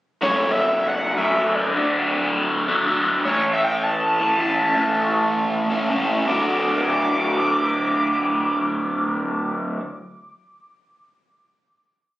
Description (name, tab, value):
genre	rock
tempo	159 BPM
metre	4/4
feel	straight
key	D major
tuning	A4 = 440 Hz
part	overdriven synth lead	melody	0.2-9.5 s	C#5 to D6	-23 LUFS	equal	none
part	raw garage guitar	riff	0.2-9.8 s	F#2 to F#4	-20 LUFS	equal	overdrive, phaser
room	light reverb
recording	recorded on a phone in the room, club reverb, compression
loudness	-18 LUFS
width	side -16 dB against mid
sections	0.2-6.3 pre-chorus; 6.3-9.3 final chord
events	none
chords	0.2 F#m; 1.7 D; 3.3 A; 6.3 D